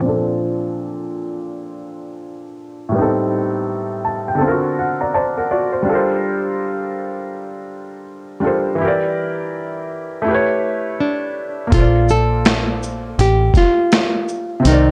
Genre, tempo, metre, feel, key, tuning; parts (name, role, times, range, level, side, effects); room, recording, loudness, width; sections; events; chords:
lo-fi hip hop; 82 BPM; 4/4; swing 60% on 16ths; Bb major; A4 = 438 Hz
felt-muted upright piano; accompaniment; 0.0-14.9 s; A2 to Bb5; -21 LUFS; equal; cassette tape, low-pass filter
nylon-string guitar; melody; 11.0-14.9 s; D4 to A4; -20 LUFS; equal; low-pass filter
deep dub fingered electric bass; bass; 11.7-14.9 s; A1 to C2; -19 LUFS; equal
boom bap sampler-style drum kit; drums; 11.7-14.9 s; finger snaps, hi-hat, kick drum, shaker, snare drum; -19 LUFS; equal
light reverb, small room ambience; cassette tape; -18 LUFS; mono
0.0-11.7 A section; 11.7-14.9 B section
filter sweep on felt piano 0.0-11.7; felt piano fill 3.7-5.9
0.0 Bbmaj9; 2.9 Am7b5; 4.4 D7b13; 5.9 Gm11; 8.8 Em7b5; 10.3 A7; 11.7 Bbmaj9